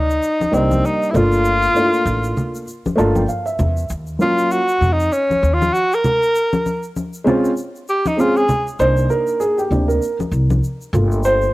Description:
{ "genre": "hip hop, jazz-hop", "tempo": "98 BPM", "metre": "4/4", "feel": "swing 58% on 16ths", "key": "C minor", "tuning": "A4 = 440 Hz", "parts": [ { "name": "breathy tenor saxophone", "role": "melody", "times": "0.0-8.7 s", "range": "C4 to Bb4", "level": "-17 LUFS", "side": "equal", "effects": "cassette tape" }, { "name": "upright bass", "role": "bass", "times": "0.0-11.5 s", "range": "G1 to F2", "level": "-19 LUFS", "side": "equal", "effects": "none" }, { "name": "egg shaker and congas", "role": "percussion", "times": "0.1-11.5 s", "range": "none", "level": "-24 LUFS", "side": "left 1 dB", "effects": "none" }, { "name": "dark baby grand piano", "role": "accompaniment", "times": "0.5-11.5 s", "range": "C3 to A5", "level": "-18 LUFS", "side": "right 1 dB", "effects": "none" } ], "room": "light reverb, small room ambience", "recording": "home recording on cassette", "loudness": "-15 LUFS", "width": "side -18 dB against mid", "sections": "0.0-8.8 A section; 8.8-11.5 A section", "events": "tenor saxophone solo 0.0-8.8; grand piano fill 2.7-3.9; grand piano solo 8.8-11.5", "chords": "0.0 Cm9; 1.1 Gm9; 3.9 Ebm9; 6.3 Abadd11; 8.8 Cm9; 10.9 Gm9" }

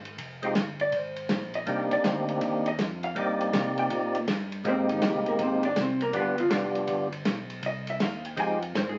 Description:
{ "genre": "soul jazz organ trio", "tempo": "161 BPM", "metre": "4/4", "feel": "swing 66% on 8ths", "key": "C minor", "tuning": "A4 = 440 Hz", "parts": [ { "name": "tonewheel organ", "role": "bass", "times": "0.0-9.0 s", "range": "F1 to C3", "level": "-40 LUFS", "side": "equal", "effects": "overdrive, slow rotary speaker" }, { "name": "warm soul drum kit", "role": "drums", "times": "0.1-8.9 s", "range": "hi-hat, kick drum, ride cymbal, snare drum", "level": "-34 LUFS", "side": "equal", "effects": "none" }, { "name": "percussive tonewheel organ", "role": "melody", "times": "0.4-8.6 s", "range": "G3 to D5", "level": "-30 LUFS", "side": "equal", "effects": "slow rotary speaker, overdrive" }, { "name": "vintage hollow-body jazz guitar", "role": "accompaniment", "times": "0.8-9.0 s", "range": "Eb3 to Ab5", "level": "-32 LUFS", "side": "equal", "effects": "none" } ], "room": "moderate club reverb, RT60 0.5 s", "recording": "very old 78 rpm record, vinyl crackle, nothing above 7.9 kHz", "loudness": "-28 LUFS", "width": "mono", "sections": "0.0-9.0 A section", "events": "hollow-body jazz guitar solo 0.0-9.0", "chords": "0.0 Fm; 1.7 Cm7; 4.7 Abmaj7; 6.1 G7; 7.6 Cm; 8.4 Fm7" }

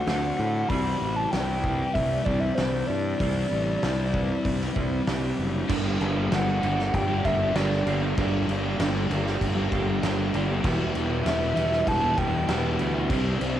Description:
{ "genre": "rock, shoegaze and dream pop", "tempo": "97 BPM", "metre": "4/4", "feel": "straight", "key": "unclear", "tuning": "A4 = 436 Hz", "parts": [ { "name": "reedy FM lead", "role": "melody", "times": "0.0-12.8 s", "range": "C5 to B5", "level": "-29 LUFS", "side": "equal", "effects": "chorus, cassette tape, plate reverb, analog delay" }, { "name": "soft additive organ-like pad", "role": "sustained chords", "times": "0.0-13.6 s", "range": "E4 to C6", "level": "-39 LUFS", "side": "left 1 dB", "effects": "none" }, { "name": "picked twelve-string acoustic guitar", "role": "arpeggios", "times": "0.0-13.6 s", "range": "E3 to G4", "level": "-40 LUFS", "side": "left 1 dB", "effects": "none" }, { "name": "overdriven semi-hollow guitar", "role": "riff", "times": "0.0-13.6 s", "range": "G2 to G4", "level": "-32 LUFS", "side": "right 8 dB", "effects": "reverse reverb, cassette tape" }, { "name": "thick fuzz guitar", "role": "riff", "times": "0.0-13.6 s", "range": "E2 to D4", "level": "-31 LUFS", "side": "left 7 dB", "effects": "distortion, wide subtle chorus, cassette tape" }, { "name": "fuzz fingered electric bass", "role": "bass", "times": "0.1-13.6 s", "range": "E1 to A2", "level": "-28 LUFS", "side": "equal", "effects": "overdrive" }, { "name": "loose indie drum kit", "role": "drums", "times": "0.1-13.6 s", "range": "crash cymbal, hi-hat, kick drum, snare drum", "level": "-31 LUFS", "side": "equal", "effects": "cassette tape" }, { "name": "overdriven electric guitar", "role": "riff", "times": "5.7-13.6 s", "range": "G2 to E4", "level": "-33 LUFS", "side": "equal", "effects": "cassette tape" } ], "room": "moderate studio reverb, RT60 0.6 s", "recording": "home recording on cassette", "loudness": "-23 LUFS", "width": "side -11 dB against mid", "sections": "0.0-5.7 A section; 5.7-13.6 B section", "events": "none", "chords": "0.0 D7; 0.7 Cmaj9; 5.7 Gm; 10.6 Em" }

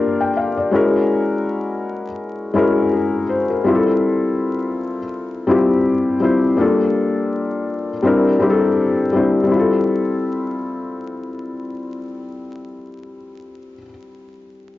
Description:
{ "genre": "hip hop", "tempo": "82 BPM", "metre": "4/4", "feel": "swing 56% on 16ths", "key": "F major", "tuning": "A4 = 440 Hz", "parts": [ { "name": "felt-muted upright piano", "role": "solo", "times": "0.0-14.8 s", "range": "G3 to G5", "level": "-17 LUFS", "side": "left 2 dB", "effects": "low-pass filter, cassette tape" } ], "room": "moderate spring reverb, RT60 1.3 s, studio ambience", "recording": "home recording on cassette, vinyl crackle, nothing above 7.6 kHz", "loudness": "-16 LUFS", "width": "side -15 dB against mid", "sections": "0.0-9.5 A section; 9.5-12.4 B section", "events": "none", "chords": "0.0 Gm9; 0.7 Gb9; 3.7 Fmaj9; 6.6 Gm7; 8.0 C9; 9.5 Fmaj9" }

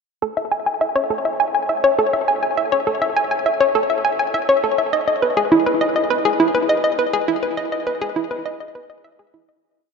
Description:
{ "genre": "ambient", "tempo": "102 BPM", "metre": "4/4", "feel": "straight", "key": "E major", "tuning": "A4 = 439 Hz", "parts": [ { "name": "hollow square pluck", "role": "solo", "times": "0.2-9.5 s", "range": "E4 to G#5", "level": "-17 LUFS", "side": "equal", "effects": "chorus, ping-pong delay" } ], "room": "wet huge ambient reverb, RT60 7.9 s", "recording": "in a vast, echoing space, nothing above 7.6 kHz", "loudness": "-16 LUFS", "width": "side -5 dB against mid", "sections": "0.2-9.6 A section", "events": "fade-out 6.5-9.6", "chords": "none" }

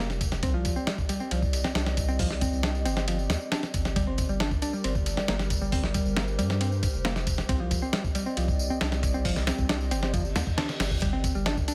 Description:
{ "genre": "breakbeat, breaks", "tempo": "136 BPM", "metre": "4/4", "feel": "straight", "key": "unclear", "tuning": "A4 = 439 Hz", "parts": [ { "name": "warbly tape-like pad", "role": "sustained chords", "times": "0.0-11.7 s", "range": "G3 to Eb5", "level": "-39 LUFS", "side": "equal", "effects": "chorus, built-in reverb, sidechain pumping" }, { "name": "picked electric bass", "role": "riff", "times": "0.0-11.7 s", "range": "F3 to D4", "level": "-34 LUFS", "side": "equal", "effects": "tube saturation, tape echo" }, { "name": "saturated sub bass", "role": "bass", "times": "0.0-11.6 s", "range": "F1 to G2", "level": "-32 LUFS", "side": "equal", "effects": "none" }, { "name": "dusty soul sampler-style drum kit", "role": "drums", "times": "0.1-11.7 s", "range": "hi-hat, kick drum, ride cymbal, snare drum", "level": "-31 LUFS", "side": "equal", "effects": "none" }, { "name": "tambourine", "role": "drums", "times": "0.1-11.7 s", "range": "none", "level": "-42 LUFS", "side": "equal", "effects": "none" }, { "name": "reverse cymbal", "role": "sound effects", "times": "10.3-11.0 s", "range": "none", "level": "-43 LUFS", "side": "equal", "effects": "none" } ], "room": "digital ambience", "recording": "none", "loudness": "-27 LUFS", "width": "mono", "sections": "0.0-11.7 A section", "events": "reverse cymbal 10.3-11.0", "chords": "0.4 Cmadd9; 4.0 Gm; 7.5 Cmadd9; 11.0 Gm" }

